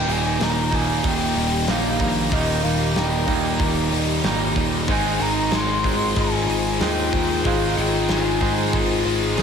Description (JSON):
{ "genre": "rock, shoegaze and dream pop", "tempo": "94 BPM", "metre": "4/4", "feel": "straight", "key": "Eb major", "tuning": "A4 = 440 Hz", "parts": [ { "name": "breathy mellow concert flute", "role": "melody", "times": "0.0-9.1 s", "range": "Eb5 to C6", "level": "-27 LUFS", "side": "left 1 dB", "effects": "ping-pong delay" }, { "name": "icy glass pad", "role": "sustained chords", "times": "0.7-9.4 s", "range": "Eb4 to Bb5", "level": "-27 LUFS", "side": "left 3 dB", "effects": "chorus, built-in reverb" }, { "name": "picked twelve-string acoustic guitar", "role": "arpeggios", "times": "0.0-9.4 s", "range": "Eb2 to Eb4", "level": "-33 LUFS", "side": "left 3 dB", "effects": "ensemble chorus, ping-pong delay" }, { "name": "sludgy distorted guitar", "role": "riff", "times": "0.0-9.4 s", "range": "Eb2 to Ab3", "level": "-28 LUFS", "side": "right 1 dB", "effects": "overdrive" }, { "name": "thick fuzz guitar", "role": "riff", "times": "0.0-9.4 s", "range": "Eb2 to Ab3", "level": "-26 LUFS", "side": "left 7 dB", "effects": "distortion, lush chorus" }, { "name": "twangy electric guitar", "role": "riff", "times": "0.0-9.4 s", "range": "Eb2 to Eb4", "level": "-26 LUFS", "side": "right 10 dB", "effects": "reverse reverb" }, { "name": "fuzz picked electric bass", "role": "bass", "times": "0.0-9.4 s", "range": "Eb1 to Ab2", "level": "-27 LUFS", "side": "equal", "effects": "overdrive" }, { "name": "big rock drum kit", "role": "drums", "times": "0.1-9.4 s", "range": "hi-hat, kick drum, snare drum", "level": "-26 LUFS", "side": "equal", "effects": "none" } ], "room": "moderate plate reverb, RT60 1.9 s, small room ambience", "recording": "dreamy mix soaked in reverb", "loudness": "-18 LUFS", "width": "side -7 dB against mid", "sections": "0.0-9.4 A section", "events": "none", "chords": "0.0 Eb; 4.9 Ab6" }